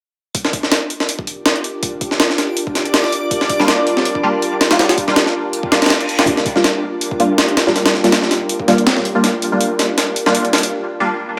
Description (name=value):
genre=drum and bass, jungle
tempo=162 BPM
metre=4/4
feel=swing 54% on 16ths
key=G minor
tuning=A4 = 440 Hz
part: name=ethereal airy pad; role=sustained chords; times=0.9-10.7 s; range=D4 to Bb4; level=-25 LUFS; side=equal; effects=ensemble chorus, built-in reverb
part: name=breakbeat sampler-style drum kit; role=drums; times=0.3-10.7 s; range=hi-hat, kick drum, snare drum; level=-18 LUFS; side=equal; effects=high-pass filter on kick, high-pass filter on hats, high-pass filter on snare
part: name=backwards swelling texture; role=texture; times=0.3-6.3 s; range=D5 to D6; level=-28 LUFS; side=equal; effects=built-in reverb
part: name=band-passed chord stab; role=stabs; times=3.6-11.1 s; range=G3 to F4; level=-20 LUFS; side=equal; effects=phaser, ensemble chorus, cassette tape, dub echo
part: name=reverse cymbal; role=sound effects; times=6.0-6.3 s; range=none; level=-29 LUFS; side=equal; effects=none
room=wet echo chamber reverb, RT60 1.5 s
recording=none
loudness=-16 LUFS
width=mono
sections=0.3-6.3 A section; 6.3-11.4 B section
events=reverse cymbal 6.0-6.3; build-up 6.3-11.4; filter sweep on synth stab 6.3-11.4; drum fill 9.2-10.7; break 10.7-11.4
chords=0.3 Gm7